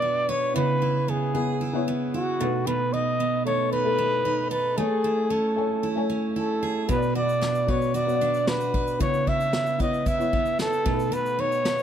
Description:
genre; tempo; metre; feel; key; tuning
acoustic pop; 114 BPM; 4/4; straight; unclear; A4 = 440 Hz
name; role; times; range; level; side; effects
breathy trumpet; melody; 0.0-11.8 s; F#4 to E5; -25 LUFS; equal; none
felt-muted upright piano; accompaniment; 0.0-11.8 s; A3 to G#5; -30 LUFS; left 7 dB; none
picked steel-string acoustic guitar; accompaniment; 0.0-11.8 s; B2 to B4; -27 LUFS; right 5 dB; none
vintage brush drum kit; drums; 6.9-11.8 s; kick drum, shaker, snare drum; -29 LUFS; equal; none
room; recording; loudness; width
light reverb; none; -22 LUFS; side -9 dB against mid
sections
0.0-11.8 A section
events
none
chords
0.0 Bm; 0.6 C#m7; 2.4 B7; 4.8 Amaj7; 6.9 Bm; 9.0 C#m7; 10.9 B7

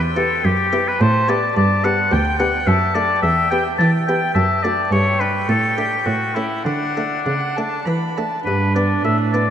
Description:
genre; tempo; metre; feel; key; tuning
classical, baroque-style sonata movement with continuo; 99-109 BPM; 3/4; rubato; D major; A4 = 440 Hz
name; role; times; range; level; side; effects
dark violin; second line; 0.0-9.5 s; D4 to B5; -26 LUFS; right 3 dB; none
buff-stop harpsichord; accompaniment; 0.0-9.5 s; D2 to A4; -24 LUFS; equal; none
warm cello; bass; 0.0-9.5 s; D2 to E3; -21 LUFS; right 1 dB; none
clear oboe; melody; 0.2-9.5 s; D4 to A5; -19 LUFS; left 2 dB; none
room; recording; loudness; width
wet cathedral reverb, RT60 5.1 s; in a vast, echoing space; -16 LUFS; side -9 dB against mid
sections
0.0-8.5 A section; 8.5-9.5 A section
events
none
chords
0.0 Em; 1.6 G; 2.7 D/F#; 3.2 Em; 4.3 D/F#; 4.9 G; 5.5 D5/A; 6.1 A7; 6.7 D; 8.5 G

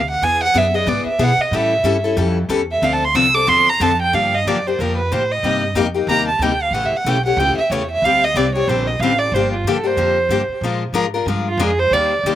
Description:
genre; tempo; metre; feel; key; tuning
acoustic string swing (jazz manouche); 185 BPM; 4/4; swing 59% on 8ths; D minor, G minor from 4.1 s; A4 = 440 Hz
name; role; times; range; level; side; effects
warm violin; melody; 0.0-12.2 s; F4 to E6; -17 LUFS; right 2 dB; slapback echo
upright bass; bass; 0.0-12.4 s; G1 to B2; -23 LUFS; right 1 dB; none
picked steel-string acoustic guitar; accompaniment; 0.2-12.4 s; C3 to Bb4; -20 LUFS; left 6 dB; slapback echo
room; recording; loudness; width
little or no reverb; recorded outdoors, with no room sound; -15 LUFS; side -12 dB against mid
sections
0.0-4.1 A section; 4.1-12.4 A section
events
violin solo 0.0-12.4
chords
0.2 E7; 1.5 A7; 2.8 Dm7; 4.1 Gm9; 5.4 Cm9; 6.7 A7; 8.0 D7sus4; 9.3 Gm7; 10.6 Bb7

